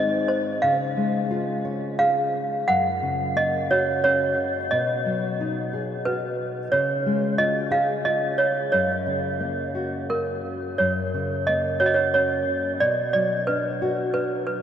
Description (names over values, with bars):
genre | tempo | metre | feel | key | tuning
children's music | 89 BPM | 3/4 | rubato | F# major | A4 = 441 Hz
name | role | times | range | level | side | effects
toy piano | melody | 0.0-14.6 s | A#4 to F#5 | -22 LUFS | right 2 dB | none
nylon-string guitar | accompaniment | 0.0-14.6 s | F#2 to C#5 | -27 LUFS | left 2 dB | none
room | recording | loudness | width
wet huge ambient reverb, RT60 8.2 s | in a vast, echoing space | -21 LUFS | side -9 dB against mid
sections
0.0-10.8 A section; 10.8-14.6 A section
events
none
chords
0.0 G#; 0.6 C#; 2.7 F#; 4.7 B6; 6.7 C#; 8.7 F#; 12.8 Bm